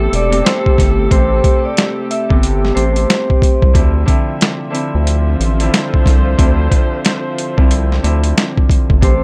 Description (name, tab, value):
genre	hip hop, boom-bap hip-hop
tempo	91 BPM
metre	4/4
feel	swing 63% on 16ths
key	D minor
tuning	A4 = 440 Hz
part	Celtic harp	accompaniment	0.0-9.2 s	C3 to G4	-23 LUFS	equal	cassette tape, high-pass filter, low-pass filter
part	warm chamber string section	sustained chords	0.0-9.2 s	C3 to E5	-28 LUFS	equal	high-pass filter, low-pass filter
part	warm saxophone section	stabs	0.0-9.2 s	C4 to C5	-28 LUFS	equal	high-pass filter, low-pass filter, tape echo
part	round analog bass	bass	0.0-9.2 s	E1 to D2	-17 LUFS	equal	none
part	vibraphone with hard mallets	melody	0.1-3.7, 9.0-9.2 s	C5 to E6	-22 LUFS	equal	high-pass filter, low-pass filter, tape echo
part	boom bap sampler-style drum kit	drums	0.1-9.2 s	hi-hat, kick drum, snare drum	-15 LUFS	equal	none
room	little or no reverb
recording	none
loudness	-14 LUFS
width	mono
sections	0.0-9.2 A section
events	none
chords	0.0 Am9; 3.8 Dm9